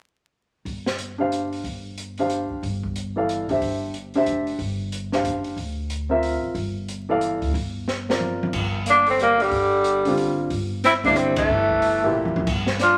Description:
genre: modal jazz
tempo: 183 BPM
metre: 3/4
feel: swing 62% on 8ths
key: G dorian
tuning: A4 = 439 Hz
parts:
  - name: upright bass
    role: bass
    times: 0.7-13.0 s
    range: E1 to D2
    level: -33 LUFS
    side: equal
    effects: none
  - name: open jazz drum kit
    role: drums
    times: 0.7-12.9 s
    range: crash cymbal, hi-hat, kick drum, ride cymbal, snare drum, toms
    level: -32 LUFS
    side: equal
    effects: none
  - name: warm upright piano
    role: accompaniment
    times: 1.2-12.5 s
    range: Bb2 to F5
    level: -26 LUFS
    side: equal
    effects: none
  - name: breathy tenor saxophone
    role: melody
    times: 8.9-13.0 s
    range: G3 to F4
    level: -21 LUFS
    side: equal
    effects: none
  - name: clear alto saxophone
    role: second line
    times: 8.9-13.0 s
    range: D3 to D4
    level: -29 LUFS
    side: equal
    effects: none
room: moderate large studio reverb, RT60 1.2 s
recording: vinyl crackle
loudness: -23 LUFS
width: mono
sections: 0.7-8.5 A section; 8.5-13.0 B section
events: drum fill 7.9-8.5, 12.1-12.5; band accent 11.3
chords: 0.7 G5; 2.6 Cadd9; 4.6 Gm7; 6.6 Cadd9/G; 8.5 G5; 10.5 Cadd9/G; 12.5 G7(no3)

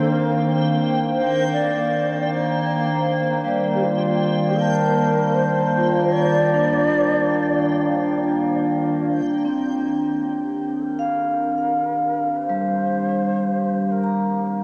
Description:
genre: ambient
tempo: 78 BPM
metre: 4/4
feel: straight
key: Eb major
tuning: A4 = 441 Hz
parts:
  - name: mellow hollow shakuhachi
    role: melody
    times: 0.0-14.6 s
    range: F4 to D5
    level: -27 LUFS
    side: equal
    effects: delay
  - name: warbly tape-like pad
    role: sustained chords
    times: 0.0-14.6 s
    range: Eb3 to F5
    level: -26 LUFS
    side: equal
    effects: chorus, built-in reverb
  - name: vibraphone with medium mallets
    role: arpeggios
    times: 0.0-14.6 s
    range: G3 to Bb5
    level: -24 LUFS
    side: equal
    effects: delay
  - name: bowed-like drone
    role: drone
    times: 0.0-9.3 s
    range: none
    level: barely audible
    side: none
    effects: none
  - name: backwards swelling texture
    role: texture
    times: 0.0-9.3 s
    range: Bb3 to G5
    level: -32 LUFS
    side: equal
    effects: built-in reverb
room: wet cathedral reverb, RT60 5.4 s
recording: worn, warbling old tape, cassette tape, warbly pitch drift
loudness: -21 LUFS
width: mono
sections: 0.0-9.3 A section; 9.3-14.6 B section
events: fade-in on ambient pad 9.3-14.6; fade-in on shakuhachi 9.3-14.6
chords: 0.0 Ebmaj7

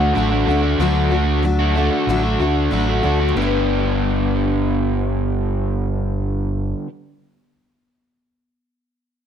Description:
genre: folk rock and heartland rock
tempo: 94 BPM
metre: 4/4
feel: straight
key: G major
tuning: A4 = 435 Hz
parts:
  - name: picked steel-string acoustic guitar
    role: accompaniment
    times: 0.0-6.9 s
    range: D3 to F#4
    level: -22 LUFS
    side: left 4 dB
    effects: none
  - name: crunchy overdriven guitar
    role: riff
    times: 0.0-6.9 s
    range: G2 to G4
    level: -21 LUFS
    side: right 1 dB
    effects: none
  - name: fingered electric bass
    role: bass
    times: 0.0-6.7 s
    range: G1 to D2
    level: -21 LUFS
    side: right 1 dB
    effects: none
room: moderate large studio reverb, RT60 1.1 s, small room ambience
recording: none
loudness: -17 LUFS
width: side -8 dB against mid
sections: 0.0-3.4 A section; 3.4-5.9 B section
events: none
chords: 0.0 D; 3.4 G

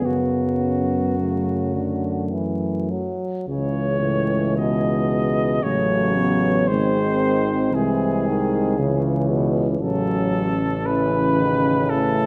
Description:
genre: classical, hymn-like piece for brass band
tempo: 50-60 BPM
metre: 3/4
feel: rubato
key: F# minor, C# minor from 3.5 s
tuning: A4 = 440 Hz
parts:
  - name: warm flugelhorn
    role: melody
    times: 0.0-12.3 s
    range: F#4 to D#5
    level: -28 LUFS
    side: equal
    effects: none
  - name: dark French horn section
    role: second line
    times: 0.0-12.3 s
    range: G#3 to C#4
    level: -28 LUFS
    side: equal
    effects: none
  - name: clear trombone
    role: accompaniment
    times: 0.0-12.3 s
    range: A2 to F#3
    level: -28 LUFS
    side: equal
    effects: none
  - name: warm euphonium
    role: accompaniment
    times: 0.0-12.3 s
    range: D#3 to G#3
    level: -28 LUFS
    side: equal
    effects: none
  - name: warm tuba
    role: bass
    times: 0.0-12.3 s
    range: G#1 to F#2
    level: -27 LUFS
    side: equal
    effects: none
room: wet recital hall reverb, RT60 1.5 s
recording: dark, warm production, vinyl crackle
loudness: -21 LUFS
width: mono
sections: 0.0-3.5 A section; 3.5-12.3 B section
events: none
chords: 0.0 F#m; 3.5 C#m; 6.7 G#; 8.8 C#m; 9.8 A

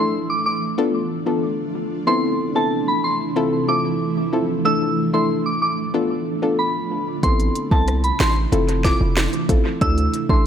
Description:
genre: dancehall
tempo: 93 BPM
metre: 4/4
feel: straight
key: A minor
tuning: A4 = 439 Hz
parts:
  - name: soft synth bell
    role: melody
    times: 0.0-10.4 s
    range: A5 to E6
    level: -23 LUFS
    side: right 1 dB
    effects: chorus, analog delay
  - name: soft round pluck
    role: accompaniment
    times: 0.0-10.5 s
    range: A3 to A4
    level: -22 LUFS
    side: left 3 dB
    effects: chorus, analog delay
  - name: ethereal airy pad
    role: sustained chords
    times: 0.0-10.5 s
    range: C3 to F4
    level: -25 LUFS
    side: right 2 dB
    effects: ensemble chorus, built-in reverb, tremolo, sidechain pumping
  - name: hard-hitting 808-style bass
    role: bass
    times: 7.2-10.5 s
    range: F1 to D2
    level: -20 LUFS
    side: equal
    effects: none
  - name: afro-pop drum kit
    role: drums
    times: 7.2-10.4 s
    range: finger snaps, hi-hat, kick drum, rim click, snare drum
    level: -21 LUFS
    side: equal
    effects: analog delay
room: light reverb, digital ambience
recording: echo-heavy mix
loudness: -18 LUFS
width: side -8 dB against mid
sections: 0.0-10.5 A section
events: none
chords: 0.0 Dsus2; 0.8 Bm7b5; 2.1 Amadd9; 3.4 Fmaj7; 4.7 Dsus2; 5.9 Bm7b5; 7.2 Amadd9; 8.5 Fmaj7; 9.8 Dsus2

